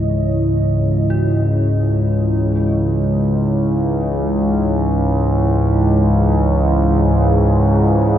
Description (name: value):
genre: dark ambient drone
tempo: free time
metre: none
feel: none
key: C# minor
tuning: A4 = 440 Hz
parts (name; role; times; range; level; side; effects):
- deep dark ambient pad; sustained chords; 0.0-8.2 s; E4 to D#5; -21 LUFS; right 2 dB; chorus, built-in reverb
- dark detuned synth bell; arpeggios; 0.0-8.2 s; E4 to F#4; -38 LUFS; left 1 dB; chorus, tremolo, tape echo
- analog drone; drone; 0.0-8.2 s; C#2 to G#2; -14 LUFS; equal; chorus
room: wet huge ambient reverb, RT60 8.0 s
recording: none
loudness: -14 LUFS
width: side -10 dB against mid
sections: 0.0-8.2 A section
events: none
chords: 0.0 C#m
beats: free time